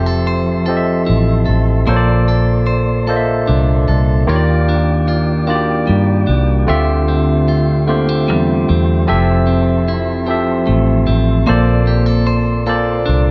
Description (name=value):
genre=slow six-eight R&B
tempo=50 BPM (dotted quarters)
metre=6/8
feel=straight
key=F major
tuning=A4 = 440 Hz
part: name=clean electric guitar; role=second line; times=0.0-13.3 s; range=D3 to C5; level=-23 LUFS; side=equal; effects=warbly pitch drift
part: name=barky tine electric piano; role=accompaniment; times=0.0-13.3 s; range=Bb2 to E5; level=-19 LUFS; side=equal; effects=none
part: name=percussive tonewheel organ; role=sustained chords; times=0.0-13.3 s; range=F3 to D6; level=-30 LUFS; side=equal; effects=fast rotary speaker
part: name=vintage muted fingered electric bass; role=bass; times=0.0-13.3 s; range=F1 to G2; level=-18 LUFS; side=equal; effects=none
room=light reverb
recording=dark, warm production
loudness=-14 LUFS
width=mono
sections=0.0-13.3 A section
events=none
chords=0.0 Fmaj7; 1.9 Bbmaj9; 4.3 Ebmaj9; 6.7 Dm11; 9.1 Fmaj7; 11.5 Bbmaj9